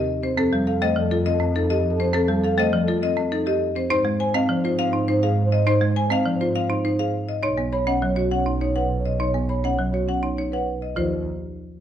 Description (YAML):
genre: classical, minimalist pattern music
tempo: 102 BPM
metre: 3/4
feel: straight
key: unclear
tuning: A4 = 440 Hz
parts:
  - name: marimba with hard mallets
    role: melody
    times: 0.0-11.2 s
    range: A4 to B5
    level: -26 LUFS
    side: left 5 dB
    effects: none
  - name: mellow French horn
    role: second line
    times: 0.0-10.7 s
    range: G4 to C#5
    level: -31 LUFS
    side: right 4 dB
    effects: none
  - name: marimba with soft mallets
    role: arpeggios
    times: 0.0-11.2 s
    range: C4 to Eb5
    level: -27 LUFS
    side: right 3 dB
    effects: none
  - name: warm studio double bass section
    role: bass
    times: 0.0-11.2 s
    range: B1 to Ab2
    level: -26 LUFS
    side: right 2 dB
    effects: none
  - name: folk marimba with hard mallets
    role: accompaniment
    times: 0.4-11.2 s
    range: F3 to Eb4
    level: -26 LUFS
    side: equal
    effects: none
room: moderate large studio reverb, RT60 1.2 s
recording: dark, warm production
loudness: -20 LUFS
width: side -10 dB against mid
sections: 0.0-11.0 A section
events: none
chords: 0.4 Fadd9; 3.9 Ab; 7.4 Bsus2; 11.0 Ebsus2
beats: | 0.37 0.96 1.55 | 2.14 2.73 3.31 | 3.90 4.49 5.08 | 5.67 6.26 6.84 | 7.43 8.02 8.61 | 9.20 9.79 10.37 | 10.96